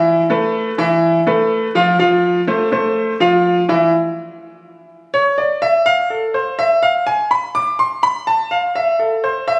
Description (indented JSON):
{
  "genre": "latin",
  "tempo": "124 BPM",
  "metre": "4/4",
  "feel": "straight",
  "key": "A harmonic minor from 3.9 s",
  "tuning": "A4 = 444 Hz",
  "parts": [
    { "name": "clear baby grand piano", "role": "solo", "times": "0.0-9.6 s", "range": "E3 to D6", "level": "-16 LUFS", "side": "equal", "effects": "none" }
  ],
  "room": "moderate plate reverb, RT60 2.7 s",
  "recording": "recorded on a phone in the room, studio reverb",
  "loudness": "-16 LUFS",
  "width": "mono",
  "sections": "0.0-3.9 A section; 3.9-9.6 B section",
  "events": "grand piano solo 3.9-9.6",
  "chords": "0.1 Asus2; 2.0 Fmaj7; 3.9 N.C."
}